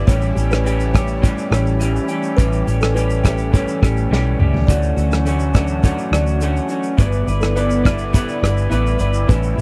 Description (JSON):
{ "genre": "indie pop, bedroom pop", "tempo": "104 BPM", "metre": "4/4", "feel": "straight", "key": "unclear", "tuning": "A4 = 440 Hz", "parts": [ { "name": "electric guitar through a small old amp", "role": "accompaniment", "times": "0.0-9.6 s", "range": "A2 to D5", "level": "-24 LUFS", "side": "equal", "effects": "subtle chorus, vibrato effect" }, { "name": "phased analog pad", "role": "sustained chords", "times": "0.0-9.6 s", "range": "C#3 to E4", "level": "-30 LUFS", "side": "equal", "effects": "phaser, chorus" }, { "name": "kalimba", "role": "second line", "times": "0.1-9.4 s", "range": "A4 to D5", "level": "-29 LUFS", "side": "equal", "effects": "subtle chorus, tape echo" }, { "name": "vintage muted picked electric bass", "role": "bass", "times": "0.1-9.6 s", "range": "G1 to D2", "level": "-21 LUFS", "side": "equal", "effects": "none" }, { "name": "unplugged drum kit", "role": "drums", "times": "0.1-9.6 s", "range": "hi-hat, kick drum, rim click, shaker, snare drum, toms", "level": "-19 LUFS", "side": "equal", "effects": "none" } ], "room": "little or no reverb", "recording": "dry, close 1970s-style studio recording", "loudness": "-17 LUFS", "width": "mono", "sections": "0.0-9.6 A section", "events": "drum fill 4.1-4.7", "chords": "0.1 A7; 4.7 Dmaj7; 7.0 G6" }